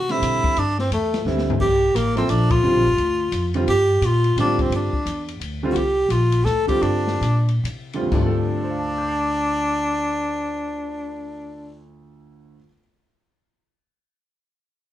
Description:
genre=modal jazz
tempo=121-174 BPM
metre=3/4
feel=swing 62% on 8ths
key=D minor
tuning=A4 = 440 Hz
part: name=clear tenor saxophone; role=melody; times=0.0-11.9 s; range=A3 to A4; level=-21 LUFS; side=left 1 dB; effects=none
part: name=upright bass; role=bass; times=0.0-12.6 s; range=G1 to C3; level=-24 LUFS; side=equal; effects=none
part: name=warm concert grand piano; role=accompaniment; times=0.1-12.8 s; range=D2 to C7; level=-26 LUFS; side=right 2 dB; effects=none
part: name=open jazz drum kit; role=drums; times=0.1-8.3 s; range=china cymbal, crash cymbal, hi-hat, kick drum, ride cymbal, snare drum, toms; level=-28 LUFS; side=left 3 dB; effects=none
room=moderate studio ambience, RT60 0.5 s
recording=heard from further back in the room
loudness=-18 LUFS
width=side -12 dB against mid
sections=0.0-5.8 A section; 5.8-8.1 B section; 8.1-11.1 C section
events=drum fill 1.3-1.6; band accent 2.5; slowing down 5.8-8.1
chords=0.0 D13sus4; 1.6 C13sus4; 5.8 C9sus4; 8.1 Dm

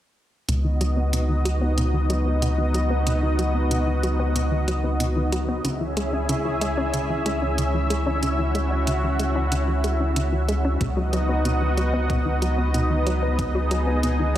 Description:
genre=synthwave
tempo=93 BPM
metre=4/4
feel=straight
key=unclear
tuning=A4 = 441 Hz
part: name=analog string pad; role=sustained chords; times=0.5-14.4 s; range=B3 to E5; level=-25 LUFS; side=equal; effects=ensemble chorus, vintage 12-bit sampler grit, sidechain pumping
part: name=analog pluck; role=arpeggios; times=0.5-14.4 s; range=B2 to C#4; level=-27 LUFS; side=equal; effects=chorus, cassette tape, tape echo
part: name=chorused synth bass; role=bass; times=0.5-14.4 s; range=C#2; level=-24 LUFS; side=equal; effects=sidechain pumping
part: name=electronic hi-hat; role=drums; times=0.5-14.4 s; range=none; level=-32 LUFS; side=right 1 dB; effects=overdrive
part: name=electronic kick drum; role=drums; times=10.8-13.5 s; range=none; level=-29 LUFS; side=equal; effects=overdrive
room=wet concert hall reverb, RT60 2.4 s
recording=big arena sound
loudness=-20 LUFS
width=side -12 dB against mid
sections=0.5-14.4 A section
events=filter sweep on analog synth bass 0.5-14.4; filter sweep on synth arpeggio sound 0.5-14.4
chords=0.5 B/C#; 5.6 C#m; 10.8 B/C#

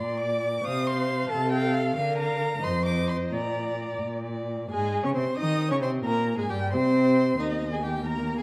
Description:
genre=quick classical-period movement for string quartet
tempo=90 BPM (dotted quarters)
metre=6/8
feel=straight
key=Bb major, Ab major from 4.7 s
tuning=A4 = 437 Hz
part: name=warm violin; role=melody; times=0.0-8.4 s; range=Eb5 to Eb6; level=-34 LUFS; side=equal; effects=none
part: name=rich violin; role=second line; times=0.0-8.4 s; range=Eb4 to F5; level=-34 LUFS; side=equal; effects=none
part: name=warm viola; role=accompaniment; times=0.0-8.4 s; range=G3 to D5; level=-31 LUFS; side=equal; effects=none
part: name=rich cello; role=bass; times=0.0-8.4 s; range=Eb2 to Eb3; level=-31 LUFS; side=equal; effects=none
room=wet recital hall reverb, RT60 1.4 s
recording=dark, warm production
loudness=-27 LUFS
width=mono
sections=0.0-4.7 A section; 4.7-8.4 B section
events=none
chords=0.0 Bb; 0.6 F/C; 2.0 Bb/D; 2.6 F5; 3.3 Bb; 4.7 Ab; 6.0 Gm; 6.7 N.C.; 7.4 Eb5

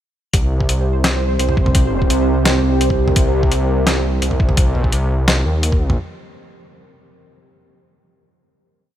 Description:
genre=half-time drum and bass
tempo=170 BPM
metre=4/4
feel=half-time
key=C minor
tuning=A4 = 440 Hz
part: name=deep dark ambient pad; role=sustained chords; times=1.0-4.6 s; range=C4 to C5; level=-22 LUFS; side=right 2 dB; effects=chorus, built-in reverb, sidechain pumping
part: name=dark detuned saw bass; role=bass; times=0.3-6.0 s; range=C2 to Eb2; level=-17 LUFS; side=equal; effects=none
part: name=boom bap sampler-style drum kit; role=drums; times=0.3-6.0 s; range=hi-hat, snare drum, toms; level=-19 LUFS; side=equal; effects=studio reverb
part: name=electronic kick drum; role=drums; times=0.3-5.8 s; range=none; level=-16 LUFS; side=equal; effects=studio reverb
part: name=pulsing gated texture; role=texture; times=0.6-4.6 s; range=C5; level=-27 LUFS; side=right 1 dB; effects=chorus, built-in reverb
room=light reverb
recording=none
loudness=-14 LUFS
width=side -11 dB against mid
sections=0.3-6.0 drop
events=drop 0.3-6.0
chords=0.3 C5

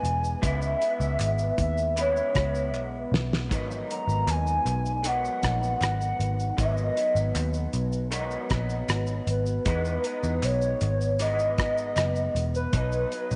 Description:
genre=indie pop, bedroom pop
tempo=78 BPM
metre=4/4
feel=straight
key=unclear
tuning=A4 = 440 Hz
part: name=hollow clarinet-like synth lead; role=melody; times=0.0-13.4 s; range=B4 to A#5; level=-30 LUFS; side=equal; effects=lush chorus, slapback echo
part: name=electric guitar through a small old amp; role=accompaniment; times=0.0-13.4 s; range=G#2 to E4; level=-35 LUFS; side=equal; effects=ensemble chorus, warbly pitch drift
part: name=vintage muted picked electric bass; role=bass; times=0.0-13.4 s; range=E1 to E2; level=-30 LUFS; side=equal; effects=none
part: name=damped 70s drum kit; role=drums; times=0.0-13.4 s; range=hi-hat, kick drum, rim click, shaker, snare drum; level=-32 LUFS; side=equal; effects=none
part: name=group handclap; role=percussion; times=1.2-12.1 s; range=none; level=-44 LUFS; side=equal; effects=none
room=light reverb, small room ambience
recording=nothing above 10.4 kHz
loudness=-27 LUFS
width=mono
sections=0.0-13.4 A section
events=drum fill 2.7-3.5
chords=0.4 C#m7; 3.5 G#m7; 9.7 Emaj7; 12.7 B

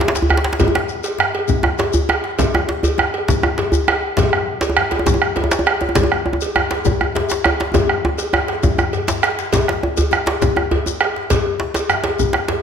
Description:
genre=west african traditional, West African drum ensemble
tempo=134 BPM (dotted quarters)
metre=12/8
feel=straight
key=none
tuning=none
part: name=cowbell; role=percussion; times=0.0-12.6 s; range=none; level=-23 LUFS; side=right 1 dB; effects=none
part: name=djembe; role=percussion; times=0.0-12.6 s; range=none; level=-23 LUFS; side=left 7 dB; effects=none
part: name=djembe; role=percussion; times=0.0-12.6 s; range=none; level=-20 LUFS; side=right 1 dB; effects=none
part: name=bombo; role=percussion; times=0.2-12.5 s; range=none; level=-19 LUFS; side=right 3 dB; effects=none
part: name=shekere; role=percussion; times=0.2-12.3 s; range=none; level=-30 LUFS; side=left 8 dB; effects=none
room=wet recital hall reverb, RT60 1.3 s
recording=none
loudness=-15 LUFS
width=side -7 dB against mid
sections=0.0-9.5 A section; 9.5-12.6 B section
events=drum fill 7.7-9.5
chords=none

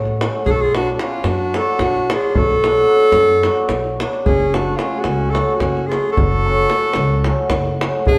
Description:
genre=balkan folk, Balkan wedding band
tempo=221 BPM (eighths)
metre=7/8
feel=straight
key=F# harmonic minor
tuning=A4 = 436 Hz
part: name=clear alto saxophone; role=melody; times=0.0-8.2 s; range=E#4 to A4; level=-19 LUFS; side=equal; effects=none
part: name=warm clarinet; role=second line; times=0.0-8.2 s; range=C#4 to F#4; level=-28 LUFS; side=equal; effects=none
part: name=cimbalom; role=accompaniment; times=0.0-8.1 s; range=F#3 to F#4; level=-25 LUFS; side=equal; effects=none
part: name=upright bass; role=bass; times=0.0-8.2 s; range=F#1 to F#2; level=-25 LUFS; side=equal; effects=none
part: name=davul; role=percussion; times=0.1-8.2 s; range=none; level=-24 LUFS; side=equal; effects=none
room=wet stone room reverb, RT60 1.4 s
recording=band playing live in one room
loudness=-17 LUFS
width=mono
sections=0.0-8.2 A section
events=none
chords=0.5 Bm; 4.3 F#m

